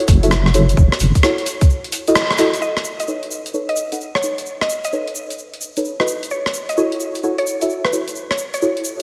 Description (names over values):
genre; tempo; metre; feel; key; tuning
UK garage, two-step garage; 130 BPM; 4/4; swing 65% on 16ths; unclear; A4 = 440 Hz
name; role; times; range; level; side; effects
deep mellow chord stab; stabs; 0.0-8.8 s; D#4 to F#5; -23 LUFS; equal; chorus, diffuse ambient delay
breakbeat sampler-style drum kit; drums; 0.0-9.0 s; hi-hat, rim click; -25 LUFS; equal; studio reverb
deep soft wobble bass; bass; 0.1-1.1 s; F#1; -16 LUFS; equal; chorus
electronic kick drum; drums; 0.1-1.7 s; none; -14 LUFS; equal; studio reverb
egg shaker; percussion; 0.1-9.0 s; none; -32 LUFS; equal; none
mallet-like synth pluck; melody; 2.6-8.8 s; B4 to D#5; -26 LUFS; equal; chorus, diffuse ambient delay
room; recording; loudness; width
wet lush hall reverb, RT60 2.1 s; dreamy mix soaked in reverb, vinyl crackle; -18 LUFS; mono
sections
0.0-2.6 A section; 2.6-9.0 B section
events
band accent 2.2; filter sweep on synth stab 2.6-9.0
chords
0.0 F#m7; 2.6 B9; 6.1 F#m7